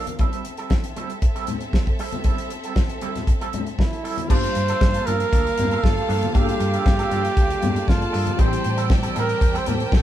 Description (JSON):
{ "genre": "disco", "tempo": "117 BPM", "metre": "4/4", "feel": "straight", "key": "G dorian", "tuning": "A4 = 440 Hz", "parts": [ { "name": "warm studio violin section", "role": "second line", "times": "0.0-10.0 s", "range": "C4 to A5", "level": "-32 LUFS", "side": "equal", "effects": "none" }, { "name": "electric guitar with an envelope filter", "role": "accompaniment", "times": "0.0-9.8 s", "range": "F3 to A4", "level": "-32 LUFS", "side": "right 6 dB", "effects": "tremolo" }, { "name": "damped 70s drum kit", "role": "drums", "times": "0.1-10.0 s", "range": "crash cymbal, hi-hat, kick drum, snare drum", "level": "-20 LUFS", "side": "equal", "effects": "none" }, { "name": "congas", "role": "percussion", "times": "0.1-10.0 s", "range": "none", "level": "-31 LUFS", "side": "left 4 dB", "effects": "none" }, { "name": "warm flugelhorn", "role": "melody", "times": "3.8-10.0 s", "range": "E4 to C5", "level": "-24 LUFS", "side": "right 3 dB", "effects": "none" }, { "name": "tine electric piano", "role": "accompaniment", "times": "4.3-10.0 s", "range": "E3 to A4", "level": "-30 LUFS", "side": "left 3 dB", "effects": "phaser" }, { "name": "clear studio string section", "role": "sustained chords", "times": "4.3-10.0 s", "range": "Bb3 to A5", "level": "-33 LUFS", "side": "right 1 dB", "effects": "none" }, { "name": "hollow-body short-scale fingered electric bass", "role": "bass", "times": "4.3-10.0 s", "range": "G1 to A2", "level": "-26 LUFS", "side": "equal", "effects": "none" } ], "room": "light reverb", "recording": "band playing live in one room", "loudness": "-19 LUFS", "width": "side -12 dB against mid", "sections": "0.0-4.3 A section; 4.3-10.0 B section", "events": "none", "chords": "0.2 Am7; 4.3 Gm9; 8.4 Am7", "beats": "| 0.20 0.71 1.23 1.74 | 2.25 2.77 3.28 3.79 | 4.30 4.82 5.33 5.84 | 6.35 6.86 7.37 7.88 | 8.39 8.91 9.42 9.93" }